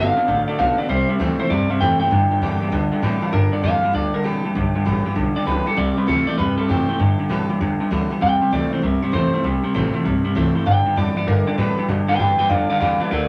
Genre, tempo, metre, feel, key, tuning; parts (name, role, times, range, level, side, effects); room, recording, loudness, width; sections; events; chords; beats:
rockabilly; 196 BPM; 4/4; swing 65% on 8ths; G mixolydian; A4 = 445 Hz
electric guitar through a small old amp; melody; 0.0-13.3 s; G4 to G5; -24 LUFS; equal
picked steel-string acoustic guitar; accompaniment; 0.0-13.3 s; G2 to G4; -28 LUFS; equal
warm upright piano; accompaniment; 0.0-3.3, 10.7-13.2 s; A4 to A5; -36 LUFS; equal
electric guitar through a small old amp; riff; 0.0-13.3 s; G2 to B3; -24 LUFS; equal
upright bass; bass; 0.0-13.3 s; G1 to B2; -26 LUFS; equal
wet studio ambience, RT60 0.5 s; -19 LUFS; mono
0.0-3.3 A section; 3.3-13.3 B section
clean electric guitar solo 0.0-3.3; upright piano fill 2.7-3.3
0.0 D; 0.9 C; 2.1 G; 5.8 C; 7.0 G; 8.2 C; 10.7 G
0.28 0.59 | 0.89 1.20 1.50 1.81 | 2.11 2.42 2.72 3.02 | 3.33 3.63 3.94 4.25 | 4.55 4.86 5.16 5.47 | 5.77 6.08 6.38 6.69 | 6.99 7.30 7.60 7.91 | 8.21 8.52 8.83 9.13 | 9.44 9.74 10.05 10.36 | 10.66 10.97 11.28 11.58 | 11.89 12.20 12.50 12.81 | 13.12